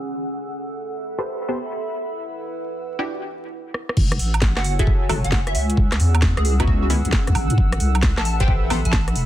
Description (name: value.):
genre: UK garage, two-step garage.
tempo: 133 BPM.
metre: 4/4.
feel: swing 66% on 16ths.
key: unclear.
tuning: A4 = 439 Hz.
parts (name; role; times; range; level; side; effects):
warm analog pad; sustained chords; 0.0-9.3 s; F#5 to E6; -35 LUFS; equal; chorus, sidechain pumping.
warbly tape-like pad; texture; 0.0-9.3 s; C#4 to B5; -30 LUFS; equal; chorus, built-in reverb, sidechain pumping.
punchy chord stab; stabs; 1.2-8.8 s; D#3 to C5; -28 LUFS; left 1 dB; chorus, dub echo.
garage drum kit; drums; 3.7-9.3 s; crash cymbal, hi-hat, rim click, snare drum, woodblock; -25 LUFS; right 1 dB; low-pass filter on hats, soft clipping on snare, low-pass filter on snare, low-pass filter on perc, low-pass filter on cymbals.
deep soft wobble bass; bass; 4.0-9.3 s; E1 to A2; -20 LUFS; equal; chorus.
electronic kick drum; drums; 4.0-9.1 s; none; -19 LUFS; equal; none.
plucky unison lead; melody; 4.6-9.1 s; F#4 to A5; -29 LUFS; right 1 dB; wide subtle chorus, dub echo.
room: little or no reverb.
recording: dense, heavily limited modern master, vinyl crackle, low-pass filter.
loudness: -18 LUFS.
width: side -13 dB against mid.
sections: 0.0-4.0 A section; 4.0-9.3 B section.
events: filter sweep on synth stab 0.0-4.0; filter sweep 0.0-4.0; drum fill 3.7; drop 4.0-9.3.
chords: 0.1 Am9; 1.9 Em9; 4.0 F#m9; 5.5 C#m9; 7.4 Am9.